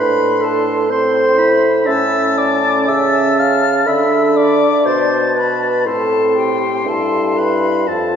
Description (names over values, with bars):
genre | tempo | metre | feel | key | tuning
classical, slow romantic movement for wind quintet | 60 BPM | 4/4 | rubato | A minor | A4 = 440 Hz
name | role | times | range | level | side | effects
bright concert flute | melody | 0.0-8.2 s | G5 to F6 | -21 LUFS | left 5 dB | none
warm oboe | second line | 0.0-8.2 s | A5 to C6 | -20 LUFS | left 2 dB | none
dark clarinet | accompaniment | 0.0-8.2 s | G4 to F5 | -17 LUFS | right 2 dB | none
mellow French horn | accompaniment | 0.0-8.2 s | C4 to F4 | -20 LUFS | left 2 dB | none
dark bassoon | bass | 0.0-8.2 s | F2 to D3 | -18 LUFS | right 1 dB | none
room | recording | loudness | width
wet concert hall reverb, RT60 2.6 s | heard from further back in the room, nothing above 7.7 kHz | -12 LUFS | side -8 dB against mid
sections
0.0-8.2 A section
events
none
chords
0.0 Am; 1.9 A; 3.9 D5; 5.9 Am